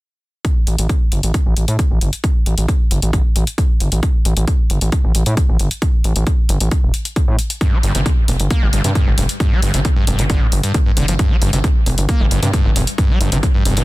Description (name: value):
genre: driving peak-time techno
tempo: 134 BPM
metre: 4/4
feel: straight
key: A phrygian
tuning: A4 = 440 Hz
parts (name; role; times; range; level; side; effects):
- electronic hi-hat; drums; 0.4-13.8 s; none; -24 LUFS; left 2 dB; sidechain pumping on hats
- electronic kick drum; drums; 0.4-13.5 s; none; -16 LUFS; equal; none
- gritty driven synth bass; bass; 0.7-13.8 s; E1 to A2; -17 LUFS; equal; tube saturation, sidechain pumping
- screaming distorted acid line; riff; 7.6-13.8 s; G2 to Bb3; -21 LUFS; equal; distortion, chorus, sidechain pumping, tape echo
room: digital ambience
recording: dense, heavily limited modern master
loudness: -14 LUFS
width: side -20 dB against mid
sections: 0.4-13.8 A section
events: filter sweep on analog synth bass 0.4-13.8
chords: 0.4 A5; 7.6 N.C.